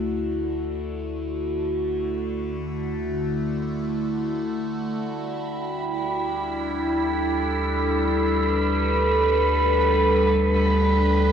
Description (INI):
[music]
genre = ambient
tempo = free time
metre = none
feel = none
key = unclear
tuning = A4 = 440 Hz
[part]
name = evolving wavetable pad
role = sustained chords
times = 0.0-11.3 s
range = D3 to B4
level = -23 LUFS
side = equal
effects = phaser, built-in reverb, cassette tape
[part]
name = round analog bass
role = bass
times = 0.0-11.3 s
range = D2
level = -28 LUFS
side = equal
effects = none
[part]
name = wind-like tuned noise texture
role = texture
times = 5.4-11.3 s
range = B5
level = -27 LUFS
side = right 3 dB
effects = built-in reverb, cassette tape
[sound]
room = wet lush hall reverb, RT60 2.6 s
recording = home recording on cassette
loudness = -21 LUFS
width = side -8 dB against mid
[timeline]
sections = 0.0-11.3 A section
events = fade-in on ambient pad 0.0-11.3; fade-in on analog synth bass 0.0-11.3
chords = 0.0 D; 5.0 Gadd9/D